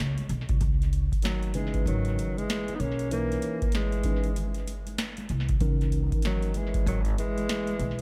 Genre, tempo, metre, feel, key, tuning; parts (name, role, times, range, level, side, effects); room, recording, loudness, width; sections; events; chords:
hip hop, jazz-hop; 96 BPM; 4/4; swing 63% on 16ths; C# dorian; A4 = 440 Hz
upright bass; bass; 0.0-8.0 s; G#1 to C#2; -32 LUFS; equal
booming analog drum machine; drums; 0.0-8.0 s; hi-hat, kick drum, snare drum; -31 LUFS; equal
congas and egg shaker; percussion; 0.2-8.0 s; -47 LUFS; equal
mellow alto saxophone; melody; 1.2-8.0 s; F#3 to D#4; -35 LUFS; equal; tape echo
breathy tenor saxophone; second line; 1.2-8.0 s; D#3 to B3; -40 LUFS; equal; tape echo
mellow tine electric piano; accompaniment; 1.5-6.5 s; C#3 to C#5; -38 LUFS; equal; tape echo
small room reverb; echo-heavy mix; -28 LUFS; mono
0.6-8.0 A section
0.0 C#7(no3); 0.6 C#m9